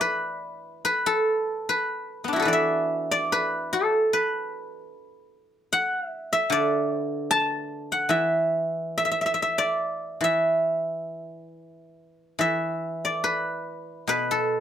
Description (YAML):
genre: chinese traditional, Chinese solo plucked strings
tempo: 67-77 BPM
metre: 4/4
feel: rubato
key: E shang mode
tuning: A4 = 440 Hz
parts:
  - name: guzheng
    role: solo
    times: 0.0-14.6 s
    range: B2 to A5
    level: -23 LUFS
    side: equal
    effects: none
room: light reverb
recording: none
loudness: -23 LUFS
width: side -9 dB against mid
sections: 0.0-14.6 A section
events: none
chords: none